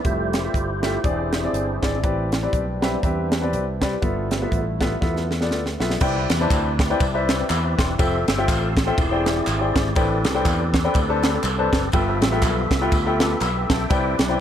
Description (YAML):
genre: uptempo gospel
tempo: 121 BPM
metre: 4/4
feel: swing 58% on 8ths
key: C major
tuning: A4 = 439 Hz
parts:
  - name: warm upright piano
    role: accompaniment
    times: 0.0-14.4 s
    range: G2 to E6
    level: -24 LUFS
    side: left 2 dB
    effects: analog delay
  - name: percussive tonewheel organ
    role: sustained chords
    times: 0.0-14.4 s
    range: F3 to C6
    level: -28 LUFS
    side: right 2 dB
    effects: slow rotary speaker, chorus vibrato
  - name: warm French horn section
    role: sustained chords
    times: 0.0-6.0 s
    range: E3 to B4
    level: -35 LUFS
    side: equal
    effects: none
  - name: crisp fusion drum kit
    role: drums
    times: 0.0-14.3 s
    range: crash cymbal, hi-hat, kick drum, ride cymbal, snare drum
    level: -23 LUFS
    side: equal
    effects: analog delay
  - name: fingered electric bass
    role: bass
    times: 0.1-14.4 s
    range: E1 to E2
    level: -26 LUFS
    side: equal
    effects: none
  - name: tambourine and handclaps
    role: percussion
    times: 6.0-14.3 s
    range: none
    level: -33 LUFS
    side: right 1 dB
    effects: analog delay
room: light reverb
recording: echo-heavy mix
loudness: -19 LUFS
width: side -10 dB against mid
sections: 0.0-6.0 A section; 6.0-14.4 B section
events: tonewheel organ solo 0.0-6.0; drum fill 5.0-6.0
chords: 0.1 Fmaj9; 1.0 E7alt; 2.0 Am11; 4.0 G13; 6.0 Cmaj9; 8.0 Fmaj9; 9.0 E7alt; 10.0 Am11; 11.9 G13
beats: | 0.05 0.55 1.04 1.54 | 2.04 2.53 3.03 3.53 | 4.03 4.52 5.02 5.51 | 6.01 6.51 7.00 7.50 | 7.99 8.48 8.98 9.47 | 9.96 10.46 10.95 11.44 | 11.93 12.43 12.92 13.41 | 13.90 14.40